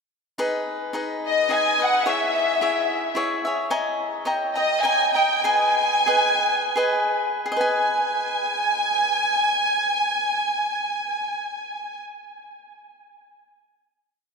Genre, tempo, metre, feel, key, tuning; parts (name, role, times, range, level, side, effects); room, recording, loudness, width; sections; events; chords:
mexican folk; 77-109 BPM; 3/4; swing 53% on 8ths; G# minor; A4 = 442 Hz
cavaquinho; accompaniment; 0.4-12.1 s; D#4 to A#5; -24 LUFS; left 1 dB
rich studio violin section; melody; 1.3-12.0 s; D#5 to G#5; -21 LUFS; equal
wet cathedral reverb, RT60 5.4 s; in a vast, echoing space; -20 LUFS; side -4 dB against mid
0.4-7.5 A section; 7.5-12.1 final chord
slowing down 3.7-7.5
0.4 G#m; 2.1 C#m; 3.7 D#7sus4; 4.3 D#7; 5.4 G#m